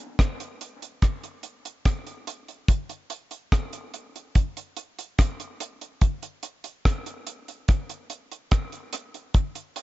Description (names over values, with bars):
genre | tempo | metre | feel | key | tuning
reggae | 72 BPM | 4/4 | straight | none | none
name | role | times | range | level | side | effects
deep reggae drum kit | drums | 0.2-9.8 s | hi-hat, kick drum, rim click | -23 LUFS | equal | none
room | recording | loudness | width
little or no reverb | nothing above 7.6 kHz | -24 LUFS | side -17 dB against mid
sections
0.0-9.8 A section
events
none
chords
none